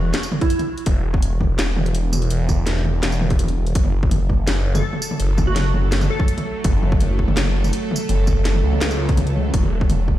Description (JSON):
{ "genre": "half-time drum and bass", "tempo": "166 BPM", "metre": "4/4", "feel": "half-time", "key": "F# minor", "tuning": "A4 = 440 Hz", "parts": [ { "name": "glassy wavetable pluck", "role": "melody", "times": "0.0-0.8, 4.7-6.5 s", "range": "E4 to A4", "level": "-28 LUFS", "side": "right 2 dB", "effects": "chorus, dub echo" }, { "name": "phased detuned saw bass", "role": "bass", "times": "0.0-10.2 s", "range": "E1 to C#2", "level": "-19 LUFS", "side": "equal", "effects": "phaser" }, { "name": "drum and bass drum kit", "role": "drums", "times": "0.1-10.2 s", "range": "hi-hat, snare drum, tambourine, toms", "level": "-24 LUFS", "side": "equal", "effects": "none" }, { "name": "electronic kick drum", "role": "drums", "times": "0.4-10.2 s", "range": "none", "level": "-19 LUFS", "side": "equal", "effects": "overdrive" }, { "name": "bowed-like drone", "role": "sustained chords", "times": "4.7-10.2 s", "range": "E3 to B4", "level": "-27 LUFS", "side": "right 3 dB", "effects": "built-in reverb, sidechain pumping" } ], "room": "little or no reverb", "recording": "played on a big sound system in a bare room, large studio reverb", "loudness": "-17 LUFS", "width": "side -13 dB against mid", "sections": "0.0-3.8 A section; 3.8-10.2 A section", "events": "drop 0.0-3.8, 3.8-10.2", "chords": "0.0 N.C.; 3.8 F#m; 9.5 E5" }